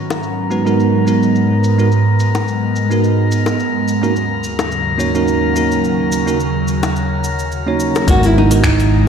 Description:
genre	sunset chillout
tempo	107 BPM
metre	4/4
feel	swing 55% on 16ths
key	G# minor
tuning	A4 = 440 Hz
part	ethereal airy pad	sustained chords	0.0-9.1 s	D#2 to F#4	-17 LUFS	right 1 dB	ensemble chorus, built-in reverb, phaser
part	drifting glass-harmonics texture	texture	0.0-9.1 s	G#4 to A#5	-23 LUFS	left 4 dB	chorus, built-in reverb
part	deep house drum kit	drums	0.1-8.9 s	finger snaps, hi-hat, shaker	-28 LUFS	equal	overdrive, low-pass filter on perc, low-pass filter on snare, low-pass filter on hats
part	bongos	percussion	0.1-8.1 s	none	-22 LUFS	left 4 dB	none
part	bell-like tine electric piano	accompaniment	0.5-8.6 s	G#3 to C#5	-18 LUFS	moving between left 2 dB and right 6 dB	auto-pan, low-pass filter, digital delay
part	nylon-string guitar	melody	8.1-9.1 s	D#4 to F#4	-15 LUFS	right 3 dB	digital delay
part	modern bright fingered electric bass	bass	8.1-9.1 s	G#1	-13 LUFS	equal	none
part	electronic kick drum	drums	8.1-8.8 s	none	-15 LUFS	left 1 dB	none
room	light reverb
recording	played on a big sound system in a bare room, large studio reverb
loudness	-13 LUFS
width	side -7 dB against mid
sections	0.0-8.1 A section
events	none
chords	0.0 G#m7; 3.6 D#m7; 8.1 G#m7

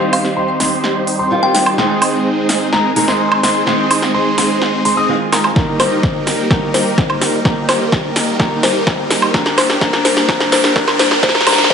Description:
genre	EDM, festival progressive house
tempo	127 BPM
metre	4/4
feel	straight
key	unclear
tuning	A4 = 438 Hz
part	fingerpicked steel-string acoustic guitar	accompaniment	0.0-11.7 s	D3 to F4	-21 LUFS	right 2 dB	sidechain pumping, digital delay
part	dark baby grand piano	arpeggios	0.0-11.7 s	Bb5 to Eb6	-22 LUFS	left 2 dB	sidechain pumping, low-pass filter, digital delay
part	big supersaw lead	riff	0.0-11.7 s	G3 to Eb5	-18 LUFS	right 1 dB	phaser, sidechain pumping, low-pass filter, digital delay
part	kalimba	melody	0.1-1.6, 5.8-11.7 s	C5 to G5	-19 LUFS	left 4 dB	digital delay
part	big-room dance drum kit	drums	0.1-11.7 s	hi-hat, snare drum, woodblock	-17 LUFS	right 1 dB	overdrive, high-pass filter on perc, high-pass filter on snare, high-pass filter on hats, high-pass filter on room
part	electronic kick drum	drums	5.6-11.7 s	none	-18 LUFS	equal	overdrive
part	riser	sound effects	8.0-11.7 s	none	-22 LUFS	right 1 dB	none
room	moderate digital room reverb, RT60 1.1 s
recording	high-pass filter, nothing above 11.0 kHz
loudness	-12 LUFS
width	side -7 dB against mid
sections	0.0-11.7 A section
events	build-up 0.0-11.7; drum fill 0.0-11.7; filter sweep on supersaw synth 0.0-11.7; filter sweep on grand piano 0.0-11.7; filter sweep 0.0-11.7; riser 8.0-11.7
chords	0.0 Cm; 1.8 Ab; 5.6 Eb; 9.3 Bb/D

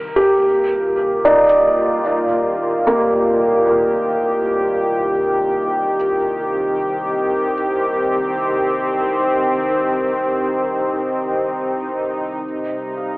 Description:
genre	ambient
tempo	free time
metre	none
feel	none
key	C minor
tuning	A4 = 439 Hz
part	warm analog pad	sustained chords	0.0-13.2 s	C2 to G4	-18 LUFS	equal	chorus, tremolo
part	felt-muted upright piano	arpeggios	0.0-13.2 s	Bb3 to F5	-17 LUFS	equal	diffuse ambient delay
part	muted symphonic double bass section	bass	12.4-13.2 s	none	barely audible	none	none
room	wet cathedral reverb, RT60 5.0 s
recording	in a vast, echoing space, telephone sound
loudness	-15 LUFS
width	side -23 dB against mid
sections	0.0-12.4 A section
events	filter sweep on analog synth pad 0.0-12.4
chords	0.0 Cm7; 12.4 Cm

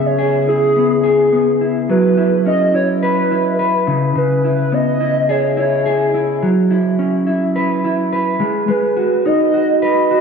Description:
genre	indie pop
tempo	106 BPM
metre	4/4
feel	straight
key	unclear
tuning	A4 = 440 Hz
part	warbly nostalgic lead	melody	0.0-10.2 s	G#4 to D#5	-17 LUFS	right 1 dB	wide subtle chorus, ping-pong delay
part	mellow electric guitar	accompaniment	0.0-10.2 s	C#3 to B4	-15 LUFS	equal	lush chorus, vibrato effect
room	wet plate reverb, RT60 3.5 s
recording	dreamy mix soaked in reverb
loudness	-13 LUFS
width	side -6 dB against mid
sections	0.0-1.9 A section; 1.9-10.2 B section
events	none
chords	0.0 C#m7; 1.9 F#7sus4; 3.9 C#m7; 6.4 F#7sus4; 8.4 G#m7

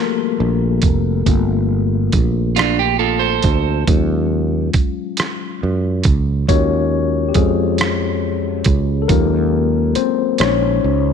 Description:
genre	slow six-eight R&B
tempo	46 BPM (dotted quarters)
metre	6/8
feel	straight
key	unclear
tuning	A4 = 442 Hz
part	mellow tine electric piano	accompaniment	0.0-11.1 s	F3 to Db5	-19 LUFS	left 10 dB	medium stereo tremolo
part	sustaining fretless electric bass	bass	0.4-11.1 s	F1 to Gb2	-18 LUFS	right 3 dB	none
part	dusty soul sampler-style drum kit	drums	0.8-10.6 s	hi-hat, kick drum, rim click	-18 LUFS	right 3 dB	none
part	electric guitar at the edge of break-up	second line	2.6-3.8 s	D4 to C5	-18 LUFS	right 14 dB	none
room	light reverb, digital ambience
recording	1960s-style stereo with parts hard left and right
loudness	-14 LUFS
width	side -7 dB against mid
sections	0.0-11.1 A section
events	tine electric piano solo 0.0-11.1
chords	0.0 Gm11; 3.9 Ebm11; 10.4 Bbm11

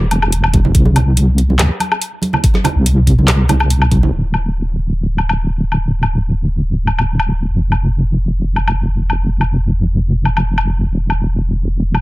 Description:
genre	deep dubstep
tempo	142 BPM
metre	4/4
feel	half-time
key	D minor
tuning	A4 = 440 Hz
part	deep soft wobble bass	bass	0.0-12.0 s	D1 to D2	-14 LUFS	equal	chorus
part	garage drum kit	drums	0.1-12.0 s	handclaps, hi-hat, snare drum, woodblock	-19 LUFS	left 2 dB	none
part	congas and bongos	percussion	0.1-4.1 s	none	-20 LUFS	right 3 dB	none
part	electronic kick drum	drums	0.5-4.0 s	none	-13 LUFS	equal	none
room	little or no reverb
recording	none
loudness	-13 LUFS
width	side -19 dB against mid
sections	0.0-4.1 A section; 4.1-12.0 B section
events	drop 0.0-4.1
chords	none

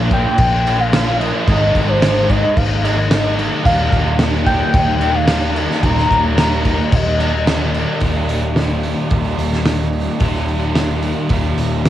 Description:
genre	rock, shoegaze and dream pop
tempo	110 BPM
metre	4/4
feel	straight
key	Eb major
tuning	A4 = 440 Hz
part	biting overdriven guitar	riff	0.0-11.9 s	Eb2 to F4	-22 LUFS	right 8 dB	reverse reverb, cassette tape
part	crunchy overdriven guitar	riff	0.0-11.9 s	Eb2 to F4	-21 LUFS	left 7 dB	lush chorus, cassette tape
part	vintage muted fingered electric bass	bass	0.0-11.9 s	Eb1 to Bb1	-20 LUFS	equal	none
part	warm velvety synth lead	melody	0.1-7.5 s	C5 to Bb5	-19 LUFS	left 1 dB	chorus, cassette tape, tape echo
part	loose indie drum kit	drums	0.1-11.9 s	crash cymbal, hi-hat, kick drum, snare drum	-19 LUFS	equal	cassette tape
room	little or no reverb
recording	home recording on cassette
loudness	-13 LUFS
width	side -12 dB against mid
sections	0.0-8.0 A section; 8.0-11.9 B section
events	none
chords	0.0 Bb; 1.5 Absus2; 3.7 Eb

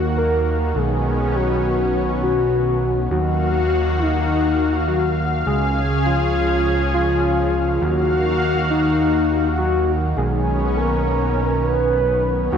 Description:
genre	synthwave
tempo	102 BPM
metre	4/4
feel	straight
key	unclear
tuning	A4 = 439 Hz
part	soft octave-layered synth lead	melody	0.0-12.6 s	Eb4 to B4	-20 LUFS	left 2 dB	chorus, digital delay
part	lush unison pad	sustained chords	0.0-12.6 s	Db3 to F5	-23 LUFS	equal	chorus
part	fat analog bass	bass	0.0-12.6 s	B1 to Eb2	-22 LUFS	right 1 dB	none
room	moderate plate reverb, RT60 2.8 s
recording	bright 1980s-style digital production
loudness	-17 LUFS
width	side -7 dB against mid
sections	0.0-12.5 A section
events	none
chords	0.0 Ebmadd9; 0.8 Badd9; 3.1 Ebmadd9; 5.5 Db; 7.8 Ebmadd9; 10.2 Badd9

